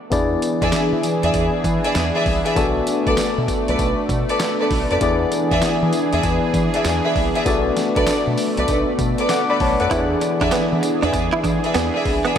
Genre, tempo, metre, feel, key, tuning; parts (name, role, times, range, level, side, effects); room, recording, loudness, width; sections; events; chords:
R&B, new jack swing; 98 BPM; 4/4; swing 64% on 16ths; A4 = 440 Hz
tine electric piano; accompaniment; 0.1-12.4 s; B3 to D6; -22 LUFS; left 4 dB; wide subtle chorus
sweeping resonant pad; sustained chords; 0.1-12.4 s; E3 to G#4; -23 LUFS; right 1 dB; chorus
deep dub fingered electric bass; bass; 0.1-12.2 s; B1 to E3; -24 LUFS; equal
dusty soul sampler-style drum kit; drums; 0.1-12.4 s; handclaps, hi-hat, kick drum, snare drum, tambourine; -25 LUFS; equal
warm symphonic string section; stabs; 0.6-12.4 s; G#4 to E5; -23 LUFS; equal; diffuse ambient delay
direct-recorded clean electric guitar; riff; 9.9-12.4 s; B3 to E4; -24 LUFS; right 5 dB; ensemble chorus
wet cathedral reverb, RT60 5.4 s; dreamy mix soaked in reverb; -16 LUFS; side -8 dB against mid
0.1-12.4 A section
0.1 E7; 2.6 Bm7; 5.0 E7; 7.5 Bm7; 9.9 E7